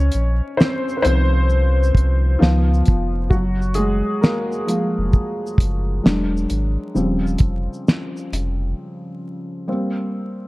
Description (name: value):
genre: lo-fi hip hop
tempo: 66 BPM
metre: 4/4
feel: swing 66% on 16ths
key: unclear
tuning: A4 = 441 Hz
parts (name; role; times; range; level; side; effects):
- dark upright piano; accompaniment; 0.0-10.5 s; Db3 to Db5; -22 LUFS; equal; low-pass filter
- warm sub bass; bass; 0.0-8.7 s; Eb1 to Db2; -18 LUFS; equal; none
- cloth-damped thuddy drum kit; drums; 0.0-8.6 s; finger snaps, hi-hat, kick drum, shaker, snare drum; -16 LUFS; equal; none
room: light reverb, studio reverb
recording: dark, warm production, vinyl crackle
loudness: -17 LUFS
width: side -20 dB against mid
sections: 0.0-10.5 A section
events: upright piano solo 0.0-10.5; break 8.8-10.5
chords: 0.0 Dbmaj7; 2.4 Db7; 3.3 Gbmaj9; 6.0 E9; 6.9 Eb13; 9.7 Gmadd11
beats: 0.58 1.49 2.40 | 3.31 4.22 5.13 6.04 | 6.95 7.86 8.77 9.68